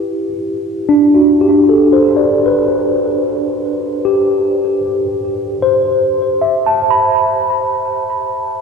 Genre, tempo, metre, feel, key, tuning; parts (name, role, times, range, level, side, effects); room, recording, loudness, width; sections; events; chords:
ambient; 76 BPM; 3/4; straight; A dorian; A4 = 440 Hz
mellow tine electric piano; solo; 0.0-8.6 s; D4 to B5; -12 LUFS; equal; medium stereo tremolo, ping-pong delay
wet lush hall reverb, RT60 2.5 s; dark, warm production; -12 LUFS; side -5 dB against mid
0.0-6.4 A section; 6.4-8.6 B section
0.0 G6; 1.7 Am7; 6.4 B5